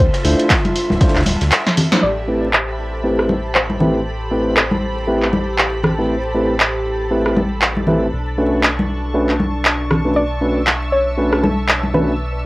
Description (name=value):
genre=deep house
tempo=118 BPM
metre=4/4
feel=swing 58% on 16ths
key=A minor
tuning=A4 = 439 Hz
part: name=soft round pluck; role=melody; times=0.0-5.8, 10.2-12.5 s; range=A4 to D5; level=-22 LUFS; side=left 1 dB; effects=chorus, cassette tape, tape echo
part: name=round analog bass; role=bass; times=0.0-12.5 s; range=D1 to D2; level=-23 LUFS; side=equal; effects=tube saturation
part: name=analog string pad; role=texture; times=0.0-12.5 s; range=A4 to E6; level=-32 LUFS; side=equal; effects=ensemble chorus, sidechain pumping, cassette tape
part: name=rich studio string section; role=texture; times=0.0-12.5 s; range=D4 to C#6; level=-26 LUFS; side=equal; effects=sidechain pumping, cassette tape
part: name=huge arena drum kit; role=drums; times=0.1-1.9 s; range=ride cymbal, snare drum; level=-32 LUFS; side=equal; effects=sidechain pumping on cymbals, high-pass filter on cymbals, cassette tape, sidechain pumping on hats, high-pass filter on hats, high-pass filter on snare, high-pass filter on room
part: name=punchy analog drum machine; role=drums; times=0.1-11.8 s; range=handclaps, hi-hat, rim click, snare drum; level=-16 LUFS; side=equal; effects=low-pass filter on hats, cassette tape, low-pass filter on snare, low-pass filter on room
part: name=overdriven tine electric piano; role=stabs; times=0.2-12.1 s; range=A3 to C5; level=-19 LUFS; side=equal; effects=vintage 12-bit sampler grit, sidechain pumping, low-pass filter, cassette tape, tape echo
part: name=electronic kick drum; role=drums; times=0.5-1.1 s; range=none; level=-15 LUFS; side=equal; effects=overdrive, cassette tape
part: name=congas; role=percussion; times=0.6-12.1 s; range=none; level=-20 LUFS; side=left 1 dB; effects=none
room=moderate small room reverb, RT60 0.5 s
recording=home recording on cassette, vinyl crackle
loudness=-14 LUFS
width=side -20 dB against mid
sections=0.0-2.0 A section; 2.0-12.5 B section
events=drum fill 1.6-2.0; band accent 1.9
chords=0.0 Dm9; 2.0 Am9; 8.1 Bm9